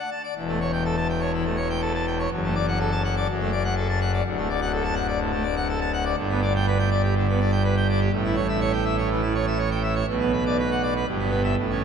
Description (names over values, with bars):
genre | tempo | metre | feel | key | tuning
classical, organ toccata | 123 BPM | 4/4 | straight | D major | A4 = 440 Hz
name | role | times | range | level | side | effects
pipe organ, full organ | solo | 0.0-11.8 s | D1 to A5 | -21 LUFS | equal | none
room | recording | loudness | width
wet cathedral reverb, RT60 5.0 s | nothing above 10.4 kHz | -21 LUFS | side -7 dB against mid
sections
0.0-11.8 A section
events
none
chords
0.4 A7/E; 2.3 D/F#; 4.2 D; 6.2 G; 8.1 A7; 10.1 Bm; 11.1 Em/G